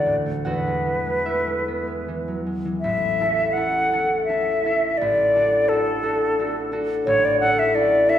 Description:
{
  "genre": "classical, romantic duo for flute and harp",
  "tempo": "73-89 BPM",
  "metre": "3/4",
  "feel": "rubato",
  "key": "A major",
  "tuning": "A4 = 440 Hz",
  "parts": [
    { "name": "bright concert flute", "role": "melody", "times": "0.0-8.2 s", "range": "A4 to F#5", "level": "-20 LUFS", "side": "equal", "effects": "none" },
    { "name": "concert harp", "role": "accompaniment", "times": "0.0-8.2 s", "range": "A1 to F#5", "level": "-24 LUFS", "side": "equal", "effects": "none" }
  ],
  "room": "wet recital hall reverb, RT60 1.5 s",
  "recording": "none",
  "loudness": "-19 LUFS",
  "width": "side -10 dB against mid",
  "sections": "0.0-2.8 A section; 2.8-8.2 B section",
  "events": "none",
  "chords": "0.4 E; 2.8 A; 5.0 D/A; 7.1 A"
}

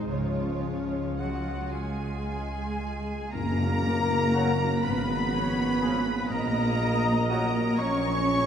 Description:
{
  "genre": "classical, slow romantic movement for symphony orchestra",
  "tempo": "36-42 BPM (dotted quarters)",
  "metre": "6/8",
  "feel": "rubato",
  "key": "Db major, F# major from 3.3 s",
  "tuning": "A4 = 440 Hz",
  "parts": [
    { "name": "rich chamber violin section", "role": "melody", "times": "0.0-8.5 s", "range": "Db5 to C#6", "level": "-36 LUFS", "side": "left 1 dB", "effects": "none" },
    { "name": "rich symphonic violin section", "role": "second line", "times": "0.0-8.5 s", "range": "C5 to C#6", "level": "-37 LUFS", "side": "left 1 dB", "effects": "none" },
    { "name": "rich chamber viola section", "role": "accompaniment", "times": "0.0-8.5 s", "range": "Ab3 to D#5", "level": "-36 LUFS", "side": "right 2 dB", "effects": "none" },
    { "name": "warm French horn section", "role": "sustained chords", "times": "0.0-8.5 s", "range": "F3 to C#4", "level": "-30 LUFS", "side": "left 2 dB", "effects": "none" },
    { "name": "concert harp", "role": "arpeggios", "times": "0.0-8.5 s", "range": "F#2 to Db5", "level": "-36 LUFS", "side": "left 3 dB", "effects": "none" },
    { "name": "rich chamber double bass section", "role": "bass", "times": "0.0-8.5 s", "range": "F#1 to Db2", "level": "-33 LUFS", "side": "right 2 dB", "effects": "none" },
    { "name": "warm chamber cello section", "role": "bass", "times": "0.0-8.5 s", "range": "Ab2 to C#4", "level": "-33 LUFS", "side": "right 3 dB", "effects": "none" },
    { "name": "dark clarinet", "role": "second line", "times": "0.1-1.7 s", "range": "Db4", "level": "-37 LUFS", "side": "left 5 dB", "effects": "none" },
    { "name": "bright flute section", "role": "second line", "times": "1.2-8.5 s", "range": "Gb5 to C#6", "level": "-35 LUFS", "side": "left 2 dB", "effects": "none" },
    { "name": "clear oboe", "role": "second line", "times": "1.2-8.5 s", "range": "Gb4 to C#5", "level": "-38 LUFS", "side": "right 2 dB", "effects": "none" },
    { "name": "mellow tuba", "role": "bass", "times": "3.3-8.5 s", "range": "F#1 to A#1", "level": "-34 LUFS", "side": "right 2 dB", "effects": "none" },
    { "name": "tam-tam", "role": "percussion", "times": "3.3-7.3 s", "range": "none", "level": "-38 LUFS", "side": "left 2 dB", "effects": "none" },
    { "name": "mellow trumpet", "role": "stabs", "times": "4.3-7.5 s", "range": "F#4 to G#4", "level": "-41 LUFS", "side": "right 1 dB", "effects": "none" },
    { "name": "clear trombone section", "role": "sustained chords", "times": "4.4-7.5 s", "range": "E#3 to C#4", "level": "-41 LUFS", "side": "right 2 dB", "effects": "none" }
  ],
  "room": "wet church reverb, RT60 3.1 s",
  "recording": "dark, warm production",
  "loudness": "-24 LUFS",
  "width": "side -8 dB against mid",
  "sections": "0.0-3.3 A section; 3.3-8.5 B section",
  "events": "band accent 3.3-4.3",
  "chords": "0.1 Db; 3.3 F#; 4.8 C#7/G#; 6.3 F#/A#"
}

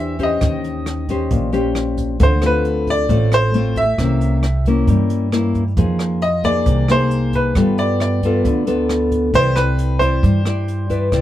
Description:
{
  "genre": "bossa nova",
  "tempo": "134 BPM",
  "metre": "4/4",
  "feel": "straight",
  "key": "C major",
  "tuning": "A4 = 440 Hz",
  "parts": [
    { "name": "clear baby grand piano", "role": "melody", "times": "0.0-11.2 s", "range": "B4 to E5", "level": "-20 LUFS", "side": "equal", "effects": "none" },
    { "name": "nylon-string guitar", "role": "accompaniment", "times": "0.0-11.2 s", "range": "A2 to D5", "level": "-19 LUFS", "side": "left 2 dB", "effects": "none" },
    { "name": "upright bass", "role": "bass", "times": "0.0-11.2 s", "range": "A1 to G2", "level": "-19 LUFS", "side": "right 1 dB", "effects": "none" },
    { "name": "jazz brush drum kit", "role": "drums", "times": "0.2-11.2 s", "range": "hi-hat, kick drum, rim click", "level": "-23 LUFS", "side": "equal", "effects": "none" }
  ],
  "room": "little or no reverb",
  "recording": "close, detailed microphones",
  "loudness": "-15 LUFS",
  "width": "side -12 dB against mid",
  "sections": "0.0-11.2 A section",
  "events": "none",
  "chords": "0.4 Eb6; 2.2 Dm7; 4.0 C7b9; 5.8 Fm7; 7.6 G9; 9.3 Cmaj9"
}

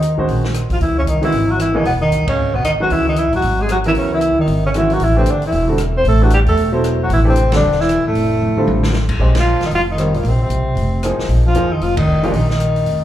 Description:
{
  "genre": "modal jazz",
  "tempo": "229 BPM",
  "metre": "4/4",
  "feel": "swing 60% on 8ths",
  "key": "Bb minor from 9.2 s",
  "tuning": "A4 = 440 Hz",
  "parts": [
    { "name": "breathy tenor saxophone", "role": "melody", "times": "0.0-13.0 s", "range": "A3 to C5", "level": "-18 LUFS", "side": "equal", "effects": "slapback echo" },
    { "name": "mellow bass clarinet", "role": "second line", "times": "0.0-13.0 s", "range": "A2 to C4", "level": "-22 LUFS", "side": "equal", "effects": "slapback echo" },
    { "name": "upright bass", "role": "bass", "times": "0.0-13.0 s", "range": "E1 to F2", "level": "-18 LUFS", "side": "equal", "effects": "none" },
    { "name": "open jazz drum kit", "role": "drums", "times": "0.0-12.9 s", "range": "crash cymbal, hi-hat, kick drum, ride cymbal, rim click, snare drum, toms", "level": "-26 LUFS", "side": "equal", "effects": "none" },
    { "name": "clear grand piano", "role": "accompaniment", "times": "0.2-12.3 s", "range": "B2 to Eb5", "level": "-22 LUFS", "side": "right 1 dB", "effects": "slapback echo" }
  ],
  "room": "light reverb, small room ambience",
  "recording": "live gig heard through the venue's PA, club ambience",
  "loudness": "-13 LUFS",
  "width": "side -12 dB against mid",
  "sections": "0.8-9.2 A section; 9.2-13.0 B section",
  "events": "band accent 2.3, 7.5, 9.3, 11.9; drum fill 8.4-8.9",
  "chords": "0.0 Ebm7; 0.8 C#m9; 5.0 Am9; 8.1 Fadd9; 9.2 Bb9sus4"
}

